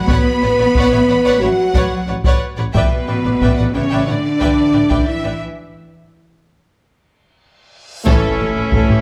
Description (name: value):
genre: cinematic, epic orchestral film score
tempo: 90 BPM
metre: 4/4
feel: straight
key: unclear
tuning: A4 = 440 Hz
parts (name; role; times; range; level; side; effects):
- clear symphonic violin section; melody; 0.0-9.0 s; A4 to B5; -28 LUFS; equal; none
- rich symphonic cello section; bass; 0.0-9.0 s; A2 to B3; -24 LUFS; equal; none
- rich symphonic violin section; second line; 0.1-9.0 s; A4 to G5; -29 LUFS; equal; none
- rich symphonic viola section; accompaniment; 0.1-9.0 s; E4 to D5; -27 LUFS; equal; none
- dark French horn section; sustained chords; 0.1-9.0 s; A3 to B4; -20 LUFS; equal; none
- rich symphonic double bass section; bass; 0.1-8.8 s; A1; -24 LUFS; equal; none
- taiko ensemble; drums; 0.1-9.0 s; none; -21 LUFS; equal; none
- reverse cymbal and impact; sound effects; 7.9-9.0 s; none; -31 LUFS; equal; none
- small flute group; second line; 8.1-9.0 s; A4; -27 LUFS; equal; none
- pipe organ, clarinet reed; sustained chords; 8.1-9.0 s; C#4 to E5; -25 LUFS; equal; none
- warm trombone section; sustained chords; 8.1-9.0 s; E3 to C#4; -26 LUFS; equal; none
room: moderate recital hall reverb, RT60 1.5 s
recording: none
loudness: -15 LUFS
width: mono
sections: 0.0-8.1 A section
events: break 5.4-8.1; drum fill 7.4-8.1; reverse cymbal 7.9; band accent 8.1-8.7; impact 8.1-9.0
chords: 0.0 Bmadd9/A; 2.8 Em7/A; 8.1 A